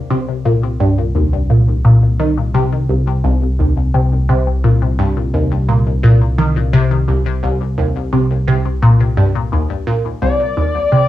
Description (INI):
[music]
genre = ambient, sequencer-driven space music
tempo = 86 BPM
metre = 4/4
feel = straight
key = C minor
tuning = A4 = 437 Hz
[part]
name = concert harp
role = arpeggios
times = 0.0-2.1 s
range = none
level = barely audible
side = none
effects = none
[part]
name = fat analog bass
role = bass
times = 0.0-11.1 s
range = C2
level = -18 LUFS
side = equal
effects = none
[part]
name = resonant blip pluck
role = riff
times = 0.1-11.1 s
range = C2 to Eb3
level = -14 LUFS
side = equal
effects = phaser, wide subtle chorus, cassette tape, ping-pong delay
[part]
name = pulse-width lead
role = melody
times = 10.2-11.1 s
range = D5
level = -15 LUFS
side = left 3 dB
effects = chorus, cassette tape, plate reverb, ping-pong delay
[sound]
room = wet studio reverb, RT60 0.6 s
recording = home recording on cassette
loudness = -12 LUFS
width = side -14 dB against mid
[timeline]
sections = 0.0-11.1 A section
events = none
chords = 0.0 Cm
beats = 0.45 1.15 | 1.85 2.55 3.24 3.94 | 4.64 5.34 6.03 6.73 | 7.43 8.13 8.82 9.52 | 10.22 10.92